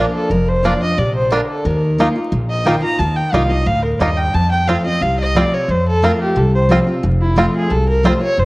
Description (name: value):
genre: bluegrass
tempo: 178 BPM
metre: 4/4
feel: straight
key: F mixolydian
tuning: A4 = 439 Hz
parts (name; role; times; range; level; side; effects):
- dark fiddle; melody; 0.0-8.4 s; E4 to Bb5; -19 LUFS; equal; none
- picked steel-string acoustic guitar; accompaniment; 0.0-8.4 s; F2 to F4; -19 LUFS; equal; none
- bluegrass banjo; arpeggios; 0.0-8.1 s; Bb3 to F4; -21 LUFS; right 1 dB; none
- upright bass; bass; 0.0-8.4 s; F1 to F2; -18 LUFS; equal; none
room: moderate spring reverb, RT60 1.7 s, small room ambience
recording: worn, warbling old tape, cassette tape, vinyl crackle, warbly pitch drift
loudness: -13 LUFS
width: side -22 dB against mid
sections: 0.0-7.0 A section; 7.0-8.4 B section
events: none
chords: 0.0 Bb/F; 1.7 Ebsus2; 4.3 F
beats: | 0.31 0.65 0.98 1.32 | 1.66 1.99 2.33 2.67 | 3.00 3.34 3.67 4.01 | 4.35 4.68 5.02 5.36 | 5.69 6.03 6.36 6.70 | 7.04 7.37 7.71 8.04 | 8.38